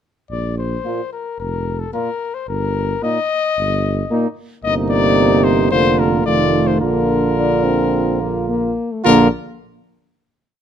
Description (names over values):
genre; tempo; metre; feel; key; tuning
classical, brass quintet; 110 BPM; 4/4; straight; Bb major; A4 = 440 Hz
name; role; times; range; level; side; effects
warm trumpet; melody; 0.3-9.3 s; A4 to Eb5; -20 LUFS; left 7 dB; none
warm bass trombone; bass; 0.3-9.3 s; F1 to Bb1; -20 LUFS; right 2 dB; none
warm French horn; accompaniment; 0.8-9.3 s; A3 to D4; -20 LUFS; left 3 dB; none
mellow flugelhorn; second line; 0.9-9.3 s; Eb4 to F4; -22 LUFS; right 9 dB; none
warm euphonium; accompaniment; 0.9-9.3 s; Bb2 to Eb3; -20 LUFS; right 4 dB; none
room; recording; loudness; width
light reverb; dark, warm production; -15 LUFS; side -9 dB against mid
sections
0.3-9.1 A section; 9.1-10.6 final chord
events
none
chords
0.3 Bb5; 2.5 Eb/G; 4.6 Cm7/G; 5.7 Bb/F; 6.3 F7; 6.8 Bb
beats
| 0.32 0.86 1.40 1.94 | 2.48 3.03 3.57 4.11 | 4.64 5.18 5.71 6.25 | 6.80 7.36 7.92 8.49 | 9.05